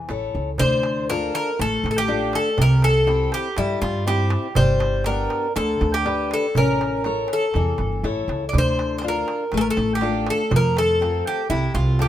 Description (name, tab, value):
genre	greek folk, Greek bouzouki band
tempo	121 BPM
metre	4/4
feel	straight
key	D minor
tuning	A4 = 440 Hz
part	Greek bouzouki	melody	0.0-12.1 s	E4 to D5	-22 LUFS	equal	none
part	picked steel-string acoustic guitar	accompaniment	0.0-12.1 s	C3 to C#5	-26 LUFS	left 4 dB	none
part	upright bass	bass	0.1-12.1 s	G1 to G2	-23 LUFS	right 1 dB	none
part	darbuka	percussion	0.1-12.1 s	none	-25 LUFS	right 2 dB	none
room	light reverb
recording	minimal, uncompressed stereo recording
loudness	-19 LUFS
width	side -12 dB against mid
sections	0.6-12.1 A section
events	none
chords	0.0 A; 0.6 Dm; 2.6 C; 4.6 G; 6.5 A; 8.5 Dm; 10.5 F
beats	0.09 | 0.59 1.08 1.58 2.08 | 2.58 3.07 3.57 4.07 | 4.56 5.06 5.55 6.05 | 6.55 7.04 7.54 8.03 | 8.53 9.02 9.52 10.01 | 10.51 11.00 11.50 11.99